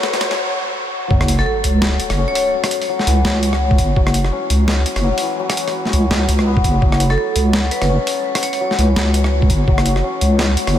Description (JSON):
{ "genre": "half-time drum and bass", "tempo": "168 BPM", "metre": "4/4", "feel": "swing 57% on 16ths, half-time", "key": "F# minor", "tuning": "A4 = 440 Hz", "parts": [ { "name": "santur", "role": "arpeggios", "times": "0.0-10.8 s", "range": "E3 to C#4", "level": "-21 LUFS", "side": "left 5 dB", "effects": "tape echo" }, { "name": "boom bap sampler-style drum kit", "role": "drums", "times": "0.0-10.7 s", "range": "hi-hat, rim click, snare drum", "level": "-21 LUFS", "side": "equal", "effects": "none" }, { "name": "riser and sub drop", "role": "sound effects", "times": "0.0-2.5 s", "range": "none", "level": "-25 LUFS", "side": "equal", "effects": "none" }, { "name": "deep soft wobble bass", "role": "bass", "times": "0.2-10.8 s", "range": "F#1 to C#2", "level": "-16 LUFS", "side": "equal", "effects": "chorus, high-pass filter" }, { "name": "electronic kick drum", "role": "drums", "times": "1.1-1.2, 3.7-4.0, 6.6-6.9, 9.4-9.8 s", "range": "none", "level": "-16 LUFS", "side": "equal", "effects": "none" }, { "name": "vibraphone with medium hard mallets", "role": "melody", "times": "1.4-2.4, 7.1-8.9 s", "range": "A4 to C#5", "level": "-25 LUFS", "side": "right 3 dB", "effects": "ping-pong delay" } ], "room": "light reverb, small room ambience", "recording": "high-pass filter", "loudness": "-14 LUFS", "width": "side -11 dB against mid", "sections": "0.0-1.1 A section; 1.1-10.8 B section", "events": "build-up 0.0-1.1; drum fill 0.0-0.4; riser 0.0-0.4; break 0.4-1.1; drop 1.1-10.8; impact 1.1-2.5", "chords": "0.0 F#m" }